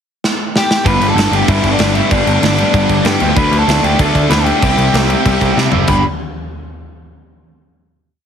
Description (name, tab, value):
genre	punk rock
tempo	191 BPM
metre	4/4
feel	straight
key	G major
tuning	A4 = 442 Hz
part	big rock drum kit	drums	0.2-6.0 s	crash cymbal, kick drum, snare drum, toms	-17 LUFS	equal	none
part	smooth overdriven lead guitar	melody	0.6-6.0 s	D4 to B5	-17 LUFS	left 2 dB	none
part	biting overdriven guitar	riff	0.8-6.0 s	G2 to G4	-18 LUFS	right 14 dB	none
part	crunchy overdriven guitar	riff	0.9-6.0 s	G2 to D4	-18 LUFS	left 9 dB	none
part	overdriven picked electric bass	bass	0.9-6.0 s	F#1 to C3	-16 LUFS	right 1 dB	none
room	light reverb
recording	heavily compressed radio sound, multiband compression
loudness	-10 LUFS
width	side -8 dB against mid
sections	0.0-0.9 pickup bar; 0.9-5.9 riff; 5.9-7.1 final chord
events	drum fill 0.2-0.9, 5.6-5.9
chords	0.0 N.C.; 0.9 G; 3.4 D; 4.6 C; 5.9 G5